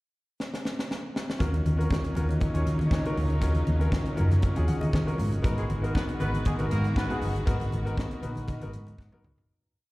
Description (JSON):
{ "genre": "disco", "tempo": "119 BPM", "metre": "4/4", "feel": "straight", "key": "Eb minor", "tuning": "A4 = 440 Hz", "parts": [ { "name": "tight funk drum kit", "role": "drums", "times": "0.4-9.5 s", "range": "hi-hat, kick drum, snare drum, toms", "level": "-28 LUFS", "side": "equal", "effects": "none" }, { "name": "warm concert grand piano", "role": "accompaniment", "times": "1.4-9.5 s", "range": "Cb4 to Gb5", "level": "-33 LUFS", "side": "left 1 dB", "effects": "plate reverb, slapback echo" }, { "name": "warm studio string section", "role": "sustained chords", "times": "1.4-9.5 s", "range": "Db3 to Gb4", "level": "-36 LUFS", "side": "equal", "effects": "none" }, { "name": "hollow-body short-scale fingered electric bass", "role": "bass", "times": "1.4-9.5 s", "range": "G1 to Eb3", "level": "-26 LUFS", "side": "equal", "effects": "none" }, { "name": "congas", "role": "percussion", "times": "1.4-9.4 s", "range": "none", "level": "-36 LUFS", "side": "left 1 dB", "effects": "none" }, { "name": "clear horn section", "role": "stabs", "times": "5.6-7.2 s", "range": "Ab3 to Cb5", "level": "-36 LUFS", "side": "equal", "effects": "plate reverb, slapback echo" } ], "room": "light reverb", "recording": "live gig heard through the venue's PA, recital hall reverb", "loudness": "-25 LUFS", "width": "side -20 dB against mid", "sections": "0.0-1.4 pickup bar; 1.4-9.5 groove", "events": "drum fill 0.4-1.4, 9.0-9.5; grand piano fill 4.4-5.4, 8.0-9.5; fade-out 7.5-9.5", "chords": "0.0 N.C.; 1.4 Ebm7; 5.4 Abm7", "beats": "0.38 0.89 | 1.40 1.90 2.41 2.91 | 3.42 3.92 4.43 4.93 | 5.44 5.95 6.46 6.96 | 7.47 7.98 8.48 8.99" }